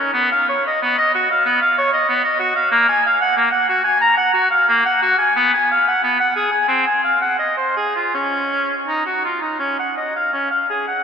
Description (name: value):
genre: classical, baroque-style fantasia for unaccompanied oboe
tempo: 78-94 BPM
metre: 4/4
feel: rubato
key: F# major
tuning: A4 = 440 Hz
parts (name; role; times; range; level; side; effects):
- clear oboe; solo; 0.0-11.0 s; A#3 to A#5; -15 LUFS; equal; none
room: wet cathedral reverb, RT60 4.0 s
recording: none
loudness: -15 LUFS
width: side -7 dB against mid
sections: 0.0-11.0 A section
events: none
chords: none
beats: | 0.12 0.80 1.45 2.08 | 2.72 3.37 4.02 4.68 | 5.37 6.04 6.70 7.39 | 8.13 8.88 9.60 10.33